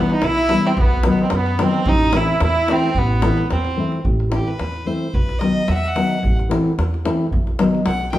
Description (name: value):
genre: balkan folk, Balkan wedding band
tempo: 110 BPM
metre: 2/4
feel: swing 55% on 16ths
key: A dorian sharp4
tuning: A4 = 441 Hz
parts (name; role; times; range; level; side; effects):
- clear fiddle; melody; 0.0-8.2 s; B3 to G5; -23 LUFS; equal; none
- clear trumpet; second line; 0.0-4.0 s; B3 to E4; -23 LUFS; right 4 dB; none
- nylon-string guitar; accompaniment; 0.0-8.2 s; D#3 to E4; -20 LUFS; left 2 dB; none
- davul; percussion; 0.1-8.2 s; none; -23 LUFS; equal; none
- upright bass; bass; 0.2-8.2 s; A1 to F#2; -22 LUFS; equal; none
room: wet large studio reverb, RT60 1.1 s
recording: band playing live in one room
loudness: -16 LUFS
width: side -14 dB against mid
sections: 0.0-4.0 A section; 4.0-8.2 B section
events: fiddle solo 4.0-8.2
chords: 0.0 Em; 0.8 B; 1.9 Am; 5.1 B; 6.2 Am; 7.3 B